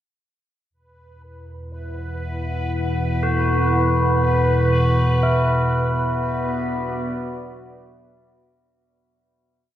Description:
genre	dark ambient drone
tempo	60 BPM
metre	4/4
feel	straight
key	unclear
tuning	A4 = 440 Hz
part	deep dark ambient pad	sustained chords	1.9-8.7 s	B3 to F#5	-25 LUFS	equal	chorus, built-in reverb
part	deep rumbling drone	drone	1.6-8.8 s	E2 to B2	-21 LUFS	equal	built-in reverb
part	bubbling stepped-filter texture	texture	1.8-8.7 s	B4	-29 LUFS	left 1 dB	chorus, built-in reverb
part	tubular bells	arpeggios	3.2-9.8 s	E4 to F#4	-24 LUFS	left 1 dB	diffuse ambient delay
room	wet cathedral reverb, RT60 6.8 s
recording	in a vast, echoing space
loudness	-18 LUFS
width	side -12 dB against mid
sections	0.7-8.7 A section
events	fade-in on synth drone 0.7-8.7; fade-in on ambient pad 0.7-8.7; fade-in on synth texture 0.7-8.7; fade-out 4.7-8.7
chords	0.7 E5; 4.7 Bm

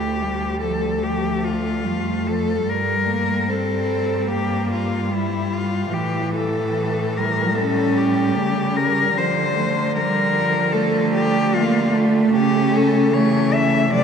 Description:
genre	classical, lyrical piece for cello ensemble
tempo	74 BPM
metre	4/4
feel	rubato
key	D minor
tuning	A4 = 441 Hz
part	rich cello	melody	0.0-14.0 s	E4 to E5	-22 LUFS	left 3 dB	none
part	warm cello	second line	0.0-14.0 s	E3 to Bb3	-24 LUFS	right 4 dB	none
part	rich cello	bass	0.0-14.0 s	D2 to D3	-26 LUFS	right 2 dB	none
part	warm cello	accompaniment	1.0-14.0 s	E3 to C#4	-24 LUFS	left 2 dB	none
room	wet cathedral reverb, RT60 5.3 s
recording	in a vast, echoing space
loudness	-18 LUFS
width	side -7 dB against mid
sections	0.0-14.0 A section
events	none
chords	0.0 Dm; 2.7 Gm11; 5.9 A7; 9.2 Dm; 12.3 A/C#

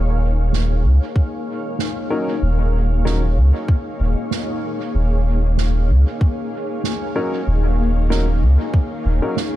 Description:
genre	ambient dub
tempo	95 BPM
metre	4/4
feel	swing 54% on 16ths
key	unclear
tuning	A4 = 438 Hz
part	granular cloud pad	sustained chords	0.0-9.6 s	Bb3 to F5	-25 LUFS	left 1 dB	built-in reverb
part	soft dub sub bass	bass	0.0-9.2 s	Eb1 to Db2	-16 LUFS	equal	none
part	snare drum	drums	0.5-9.5 s	none	-28 LUFS	right 4 dB	dub echo
part	electronic kick drum	drums	1.2-8.9 s	none	-15 LUFS	equal	none
part	warm upright piano	stabs	2.1-3.2, 7.2-9.3 s	Gb3 to Bb4	-26 LUFS	left 2 dB	dub echo
room	little or no reverb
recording	dark, warm production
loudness	-17 LUFS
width	side -14 dB against mid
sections	0.0-9.6 A section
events	none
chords	0.0 Eb7(no3)

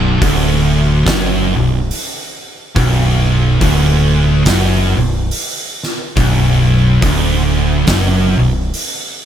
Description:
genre	stoner and doom metal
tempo	70 BPM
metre	4/4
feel	swing 60% on 8ths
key	B minor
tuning	A4 = 440 Hz
part	thick fuzz guitar	riff	0.0-8.7 s	B1 to F#2	-17 LUFS	left 6 dB	distortion
part	thick fuzz guitar	riff	0.0-8.7 s	B1 to F#2	-16 LUFS	right 6 dB	distortion
part	tight distorted guitar	riff	0.0-8.7 s	B1 to F#2	-20 LUFS	equal	distortion
part	modern bright fingered electric bass	bass	0.0-8.7 s	B0 to F#1	-17 LUFS	equal	overdrive
part	oversized low-tuned drum kit	drums	0.2-9.0 s	hi-hat, kick drum, snare drum	-19 LUFS	equal	none
room	small room ambience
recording	none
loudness	-11 LUFS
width	side -10 dB against mid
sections	0.0-9.2 A section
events	none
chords	0.0 Bm

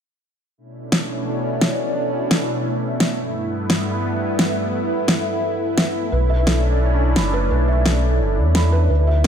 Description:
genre	liquid drum and bass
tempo	173 BPM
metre	4/4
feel	swing 54% on 16ths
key	B minor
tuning	A4 = 441 Hz
part	lush unison pad	sustained chords	0.7-9.3 s	G2 to E4	-22 LUFS	equal	chorus, phaser
part	electronic snare drum	drums	0.9-9.3 s	none	-21 LUFS	equal	none
part	felt-muted upright piano	arpeggios	6.1-9.3 s	A4 to B5	-25 LUFS	right 4 dB	tape echo
part	sub bass with octave	bass	6.1-9.3 s	F#1 to E2	-17 LUFS	equal	none
room	moderate recital hall reverb, RT60 1.6 s, digital ambience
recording	none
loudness	-17 LUFS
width	side -8 dB against mid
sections	0.6-9.3 A section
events	none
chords	0.6 Bm11; 3.2 G6; 6.1 Bm11

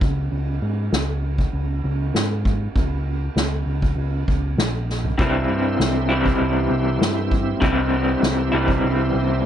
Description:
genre	psychedelic rock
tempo	99 BPM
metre	4/4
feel	straight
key	unclear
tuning	A4 = 440 Hz
part	picked electric bass	bass	0.0-9.4 s	Bb1 to Ab2	-23 LUFS	equal	none
part	soft-mallet drum kit	drums	0.0-9.3 s	kick drum, ride cymbal, snare drum, toms	-24 LUFS	equal	none
part	bright tonewheel organ	sustained chords	5.2-9.5 s	E4 to E5	-30 LUFS	right 4 dB	slow rotary speaker, overdrive, chorus vibrato
part	electric guitar through a small old amp	riff	5.2-9.5 s	C3 to E4	-20 LUFS	left 1 dB	tremolo
room	little or no reverb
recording	none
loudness	-19 LUFS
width	side -10 dB against mid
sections	0.0-9.5 A section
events	drum fill 4.9-5.2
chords	0.0 Db5; 5.2 C

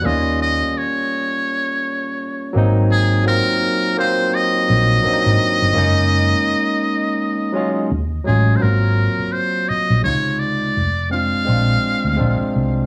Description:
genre	R&B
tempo	84 BPM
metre	4/4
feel	swing 57% on 16ths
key	unclear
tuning	A4 = 440 Hz
part	trumpet with metal mute	melody	0.0-12.5 s	Ab4 to F5	-22 LUFS	equal	analog delay
part	barky tine electric piano	accompaniment	0.0-12.9 s	C3 to F4	-23 LUFS	equal	overdrive, cassette tape
part	vintage muted fingered electric bass	bass	0.1-12.8 s	F1 to Eb2	-20 LUFS	equal	none
room	light reverb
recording	home recording on cassette, small room reverb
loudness	-18 LUFS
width	mono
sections	0.0-8.6 A section; 8.6-12.9 B section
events	none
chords	0.0 Eb9; 2.5 Ab9; 5.7 Gb69; 7.9 Ebm11; 8.6 Ab13; 10.0 Dbmaj9; 10.7 F5; 11.5 Bb9

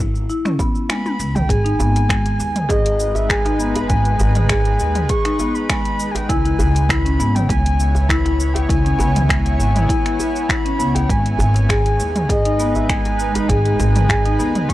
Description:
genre	organic downtempo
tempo	100 BPM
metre	4/4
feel	straight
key	G# minor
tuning	A4 = 436 Hz
part	upright bass	bass	0.0-14.6 s	G#1 to D#2	-19 LUFS	equal	tube saturation
part	deep house drum kit	drums	0.2-14.7 s	cabasa, finger snaps, hi-hat, toms	-23 LUFS	equal	overdrive
part	marimba with medium mallets	arpeggios	0.3-14.7 s	G#3 to G#4	-22 LUFS	left 2 dB	analog delay
part	electronic kick drum	drums	0.6-14.7 s	none	-22 LUFS	equal	overdrive
part	djembe	percussion	0.6-14.5 s	none	-25 LUFS	right 1 dB	none
part	breathy flute-like synth lead	melody	0.9-14.7 s	D#5 to C#6	-24 LUFS	equal	wide subtle chorus, analog delay
part	granular cloud pad	sustained chords	2.4-14.7 s	G#3 to C#5	-27 LUFS	equal	built-in reverb, sidechain pumping
part	quartz singing bowl	texture	11.1-14.7 s	G#5	-31 LUFS	left 1 dB	none
room	small room ambience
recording	dry, gritty hardware recording, cassette tape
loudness	-15 LUFS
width	side -15 dB against mid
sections	0.0-1.5 A section; 1.5-14.7 B section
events	filter sweep on marimba 0.0-1.5; drum fill 0.9-1.5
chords	0.0 C#m7; 1.5 G#m; 6.3 C#m7; 11.1 G#m

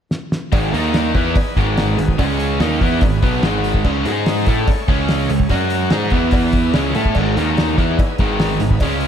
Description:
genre	classic rock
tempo	145 BPM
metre	4/4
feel	straight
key	G# minor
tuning	A4 = 440 Hz
part	cloth-damped thuddy drum kit	drums	0.1-9.1 s	crash cymbal, hi-hat, kick drum, snare drum	-19 LUFS	equal	none
part	overdriven electric guitar	riff	0.5-9.1 s	G#2 to A4	-21 LUFS	left 10 dB	spring reverb, slapback echo
part	overdriven electric guitar	riff	0.5-9.1 s	G#2 to A4	-20 LUFS	right 9 dB	none
part	fuzz picked electric bass	bass	0.5-9.1 s	G#1 to A2	-22 LUFS	equal	overdrive
part	cowbell	percussion	0.5-8.9 s	none	-33 LUFS	right 4 dB	none
part	overdriven tonewheel organ	sustained chords	0.7-9.1 s	F#3 to E5	-31 LUFS	left 1 dB	none
room	moderate lush hall reverb, RT60 1.7 s, small room ambience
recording	big arena sound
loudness	-14 LUFS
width	side -8 dB against mid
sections	0.5-9.1 A section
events	drum fill 0.1-0.5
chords	0.0 N.C.; 0.5 G#5; 0.7 D#5; 1.2 G#m; 2.2 C#5; 2.6 G#m; 3.8 C#5; 4.1 G#5; 4.5 C#5; 5.5 F#5; 5.9 G#5; 6.1 E5; 6.7 C#5; 7.2 G#5; 7.4 D#5; 7.8 G#m

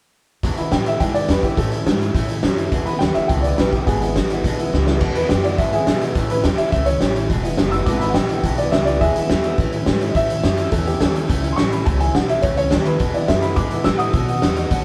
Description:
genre	rockabilly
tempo	210 BPM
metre	4/4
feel	straight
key	E major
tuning	A4 = 440 Hz
part	picked acoustic archtop guitar	accompaniment	0.4-14.8 s	E2 to F#4	-28 LUFS	equal	none
part	upright bass	bass	0.4-14.8 s	E1 to B2	-25 LUFS	equal	none
part	raw garage drum kit	drums	0.4-14.8 s	crash cymbal, hi-hat, kick drum, snare drum	-22 LUFS	equal	none
part	dark upright piano	melody	0.6-14.8 s	B3 to E6	-24 LUFS	equal	none
room	light reverb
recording	band playing live in one room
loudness	-19 LUFS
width	mono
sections	0.4-5.0 A section; 5.0-14.8 B section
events	drum fill 4.7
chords	0.4 E; 1.6 A; 2.7 E; 6.2 A; 7.3 E; 9.6 A; 13.0 E; 14.1 B

